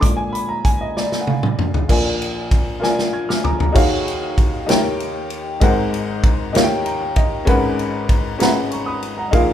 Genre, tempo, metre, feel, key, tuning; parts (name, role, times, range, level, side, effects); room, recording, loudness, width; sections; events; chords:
slow gospel; 64 BPM (dotted quarters); 6/8; straight; Eb minor; A4 = 441 Hz
warm upright piano; accompaniment; 0.0-9.5 s; Ab1 to Ab6; -20 LUFS; left 1 dB
natural country drum kit; drums; 0.0-9.5 s; crash cymbal, hi-hat, kick drum, ride cymbal, snare drum, toms; -18 LUFS; equal
moderate large studio reverb, RT60 1.1 s; band playing live in one room; -16 LUFS; side -10 dB against mid
0.0-1.9 A section; 1.9-3.8 B section; 3.8-9.5 C section
upright piano solo 0.0-1.9; drum fill 1.0-1.9, 2.8-3.8; upright piano fill 6.5-7.5
0.0 Bb7; 3.8 Ebm11; 4.7 Eb7; 5.6 Ab9; 6.5 Eb7; 7.5 Abm11